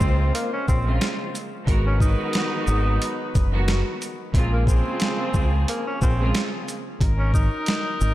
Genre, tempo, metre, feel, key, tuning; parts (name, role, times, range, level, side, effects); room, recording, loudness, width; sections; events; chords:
hip hop, boom-bap hip-hop; 90 BPM; 4/4; swing 58% on 16ths; Bb minor; A4 = 440 Hz
breathy tenor saxophone; melody; 0.0-8.1 s; Bb3 to Eb4; -29 LUFS; equal; high-pass filter, low-pass filter, ping-pong delay
warm symphonic string section; accompaniment; 0.0-6.6 s; Db3 to Bb4; -30 LUFS; right 2 dB; cassette tape, high-pass filter, low-pass filter
warm horn section; stabs; 0.0-8.1 s; Db3 to C5; -33 LUFS; left 2 dB; high-pass filter, low-pass filter, ping-pong delay
deep dub fingered electric bass; bass; 0.0-8.1 s; Gb1 to Db2; -21 LUFS; equal
boom bap sampler-style drum kit; drums; 0.0-8.1 s; hi-hat, kick drum, shaker, snare drum; -24 LUFS; equal
moderate plate reverb, RT60 2.4 s; dreamy mix soaked in reverb; -20 LUFS; side -15 dB against mid
0.0-8.1 A section
0.0 Bbm9; 1.7 Abm9; 4.3 Bbm9; 7.0 Absus2